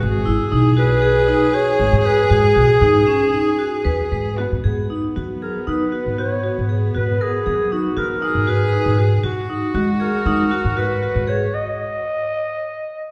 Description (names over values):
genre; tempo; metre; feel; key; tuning
contemporary instrumental, chamber music in an uneven meter; 235 BPM (eighths); 9/8; straight; G# minor; A4 = 439 Hz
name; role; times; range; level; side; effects
rich cello; second line; 0.0-12.1 s; B3 to G#4; -24 LUFS; equal; none
vibraphone with hard mallets; arpeggios; 0.0-11.4 s; C#4 to B4; -26 LUFS; equal; none
upright bass; bass; 0.0-11.5 s; G#1 to G#3; -23 LUFS; equal; none
growling clarinet; melody; 0.8-13.1 s; F#4 to D#5; -24 LUFS; equal; none
room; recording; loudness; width
wet recital hall reverb, RT60 1.8 s; heard from further back in the room; -18 LUFS; mono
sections
0.0-4.6 A section; 4.6-13.1 B section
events
stop 11.5-13.1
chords
0.0 G#m7; 9.2 B/G# (rootless)